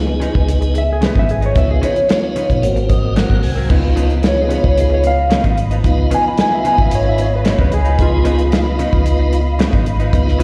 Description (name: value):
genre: straight-eighth soul blues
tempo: 112 BPM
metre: 4/4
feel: straight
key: Db mixolydian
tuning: A4 = 440 Hz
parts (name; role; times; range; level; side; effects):
- tonewheel organ; accompaniment; 0.0-10.4 s; Bb3 to Ab5; -23 LUFS; equal; slow rotary speaker, overdrive, slapback echo
- vintage muted fingered electric bass; bass; 0.0-10.4 s; Ab1 to Db2; -18 LUFS; equal; none
- direct-recorded clean electric guitar; stabs; 0.1-10.4 s; Ab2 to Eb4; -27 LUFS; equal; slapback echo
- damped 70s drum kit; drums; 0.2-10.4 s; crash cymbal, hi-hat, kick drum, snare drum; -19 LUFS; equal; none
- clean lap steel guitar; melody; 0.8-9.6 s; F4 to Cb6; -20 LUFS; equal; slapback echo
- muted symphonic string section; sustained chords; 3.7-10.4 s; Eb5 to Cb6; -30 LUFS; equal; none
room: little or no reverb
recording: live gig heard through the venue's PA, recital hall reverb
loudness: -15 LUFS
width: mono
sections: 0.0-3.7 A section; 3.7-10.4 B section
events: tonewheel organ fill 2.6-3.7; electric slide guitar solo 3.7-10.4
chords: 0.0 Db9; 2.6 Ab9; 3.7 Db9